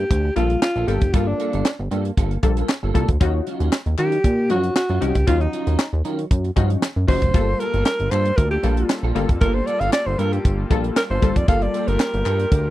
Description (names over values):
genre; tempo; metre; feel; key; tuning
early-eighties boogie funk; 116 BPM; 4/4; straight; G minor; A4 = 440 Hz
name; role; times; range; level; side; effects
breathy alto saxophone; melody; 0.0-12.7 s; D4 to F5; -22 LUFS; equal; slapback echo
chorused synth bass; bass; 0.0-12.7 s; F1 to Eb3; -21 LUFS; equal; none
tight funk drum kit; drums; 0.1-12.6 s; hi-hat, kick drum, snare drum; -19 LUFS; equal; none
electric guitar at the edge of break-up; riff; 0.2-12.7 s; Gb3 to A4; -31 LUFS; right 7 dB; ensemble chorus
funky polysynth comp; accompaniment; 0.4-12.0 s; F3 to A4; -26 LUFS; left 5 dB; chorus
group handclap; percussion; 0.6-12.4 s; none; -30 LUFS; left 13 dB; none
brassy analog pad; sustained chords; 7.3-12.7 s; G3 to A4; -32 LUFS; left 1 dB; chorus
room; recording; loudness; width
little or no reverb; dry, close 1970s-style studio recording; -18 LUFS; side -15 dB against mid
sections
0.0-12.7 A section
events
alto saxophone solo 0.0-12.7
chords
0.0 Gm9; 3.2 Ebm9; 7.3 Gm9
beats
0.10 0.62 | 1.14 1.66 2.17 2.69 | 3.21 3.73 4.24 4.76 | 5.28 5.79 6.31 6.83 | 7.34 7.86 8.38 8.90 | 9.41 9.93 10.45 10.97 | 11.48 12.00 12.52